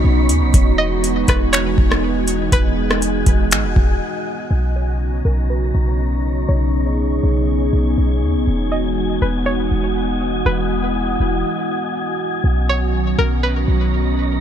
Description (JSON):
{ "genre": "hip hop, atmospheric cloud-rap", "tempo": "121 BPM", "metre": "4/4", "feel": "half-time", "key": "B major", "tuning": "A4 = 440 Hz", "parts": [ { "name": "dark analog pad", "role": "sustained chords", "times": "0.0-14.4 s", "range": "C#3 to G#4", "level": "-21 LUFS", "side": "right 1 dB", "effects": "chorus, sidechain pumping, low-pass filter" }, { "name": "warm 808-style bass", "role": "bass", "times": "0.0-14.4 s", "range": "E1 to D#2", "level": "-18 LUFS", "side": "equal", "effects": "none" }, { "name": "wind-like tuned noise texture", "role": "texture", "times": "0.0-14.4 s", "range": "D#4 to B5", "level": "-26 LUFS", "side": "left 1 dB", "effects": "built-in reverb" }, { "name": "booming analog drum machine", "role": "drums", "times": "0.3-4.0 s", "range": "finger snaps, hi-hat, kick drum, rim click", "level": "-16 LUFS", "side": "equal", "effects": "overdrive" }, { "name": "string-like resonator pluck", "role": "melody", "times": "0.8-14.4 s", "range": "A#4 to D#5", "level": "-25 LUFS", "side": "equal", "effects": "chorus, low-pass filter, ping-pong delay" } ], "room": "little or no reverb", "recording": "none", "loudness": "-15 LUFS", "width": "side -9 dB against mid", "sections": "0.0-4.5 A section; 4.5-12.4 B section; 12.4-14.4 C section", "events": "break 4.0-4.5, 11.4-12.4; filter sweep 4.5-12.4", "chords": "0.0 Badd9; 0.5 Emaj9; 4.5 Bmaj9; 8.5 Emaj9; 12.4 Bmaj9" }